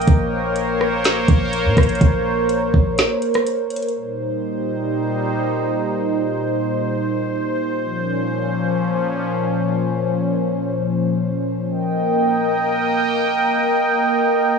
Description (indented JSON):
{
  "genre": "hip hop, atmospheric cloud-rap",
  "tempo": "124 BPM",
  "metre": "4/4",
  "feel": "half-time",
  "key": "Bb dorian",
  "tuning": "A4 = 440 Hz",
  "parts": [
    { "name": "sweeping resonant pad", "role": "sustained chords", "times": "0.0-14.6 s", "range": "Bb2 to G5", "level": "-18 LUFS", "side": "equal", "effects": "chorus, sidechain pumping" },
    { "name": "clean 808-style bass", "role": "bass", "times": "0.0-3.0 s", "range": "Bb1 to Bb2", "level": "-21 LUFS", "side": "equal", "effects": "none" },
    { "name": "smooth R&B drum kit", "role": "drums", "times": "0.0-3.9 s", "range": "hi-hat, kick drum, rim click, snare drum", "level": "-16 LUFS", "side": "equal", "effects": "vintage 12-bit sampler grit" }
  ],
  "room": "wet booth ambience, RT60 0.2 s",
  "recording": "studio ambience",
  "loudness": "-17 LUFS",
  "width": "side -5 dB against mid",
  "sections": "0.0-3.9 A section; 3.9-11.7 B section; 11.7-14.6 C section",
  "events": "break 3.0-3.9",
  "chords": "0.1 Bbmadd9; 3.9 Cm7/Bb; 7.8 Bbmadd9; 11.7 Eb/Bb"
}